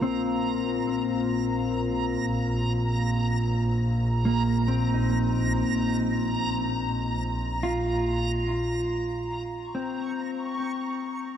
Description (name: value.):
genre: ambient.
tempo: free time.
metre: none.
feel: none.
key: unclear.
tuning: A4 = 440 Hz.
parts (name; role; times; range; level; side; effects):
mellow electric guitar; arpeggios; 0.0-11.4 s; Bb3 to F4; -28 LUFS; left 2 dB; diffuse ambient delay.
clear symphonic double bass section; bass; 0.0-9.3 s; Bb1; -28 LUFS; right 1 dB; none.
analog drone; drone; 0.0-11.4 s; Bb3 to F4; -33 LUFS; right 1 dB; chorus.
backwards swelling texture; texture; 0.0-11.4 s; Bb5 to Db6; -33 LUFS; right 2 dB; built-in reverb.
room: wet huge ambient reverb, RT60 6.9 s.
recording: cassette tape.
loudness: -24 LUFS.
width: side -9 dB against mid.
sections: 0.0-9.3 A section; 9.3-11.4 B section.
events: none.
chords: 0.0 Eb5/Bb; 9.3 Bbmadd9.